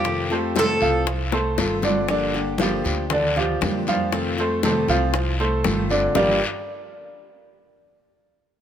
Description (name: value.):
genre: latin, Cuban son and guajira.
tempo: 118 BPM.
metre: 4/4.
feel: straight.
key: G minor.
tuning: A4 = 440 Hz.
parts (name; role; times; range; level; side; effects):
Cuban tres; melody; 0.0-1.1 s; G4 to A4; -24 LUFS; equal; none.
picked steel-string acoustic guitar; accompaniment; 0.0-6.4 s; G2 to G4; -27 LUFS; left 5 dB; none.
bright grand piano; arpeggios; 0.0-6.4 s; D3 to F5; -23 LUFS; right 2 dB; none.
upright bass; bass; 0.0-6.4 s; G1 to F2; -27 LUFS; right 1 dB; none.
bongos; percussion; 0.0-6.3 s; none; -28 LUFS; left 7 dB; none.
congas; percussion; 0.1-6.3 s; none; -29 LUFS; right 2 dB; none.
guiro; percussion; 0.1-6.3 s; none; -31 LUFS; left 5 dB; none.
room: light reverb.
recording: none.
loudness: -19 LUFS.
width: side -9 dB against mid.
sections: 0.0-2.1 A section; 2.1-6.2 B section; 6.2-8.2 C section.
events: drum fill 1.3-2.1.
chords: 0.1 F7; 2.1 Gm7; 4.1 F7; 6.2 Gm7.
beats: | 0.05 0.56 1.07 1.58 | 2.09 2.60 3.11 3.62 | 4.13 4.64 5.15 5.65 | 6.16.